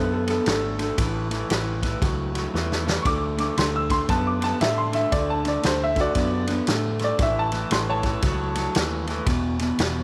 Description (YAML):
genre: electric blues shuffle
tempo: 116 BPM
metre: 4/4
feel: swing 63% on 8ths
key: unclear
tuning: A4 = 440 Hz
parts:
  - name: clear upright piano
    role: second line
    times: 0.0-8.9 s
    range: F#4 to E6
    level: -29 LUFS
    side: equal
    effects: none
  - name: electric guitar through a small old amp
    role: riff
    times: 0.0-10.0 s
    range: E2 to B3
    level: -29 LUFS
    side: equal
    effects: spring reverb
  - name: vintage muted fingered electric bass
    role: bass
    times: 0.0-10.0 s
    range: E1 to A2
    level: -31 LUFS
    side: equal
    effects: none
  - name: vintage drum kit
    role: drums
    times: 0.3-9.9 s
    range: kick drum, ride cymbal, snare drum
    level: -29 LUFS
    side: equal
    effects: none
room: moderate plate reverb, RT60 2.6 s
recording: none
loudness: -24 LUFS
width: mono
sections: 0.0-10.0 A section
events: upright piano solo 0.0-10.0; drum fill 2.5-3.1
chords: 0.0 D; 1.0 A; 3.1 D; 7.2 A; 9.3 E5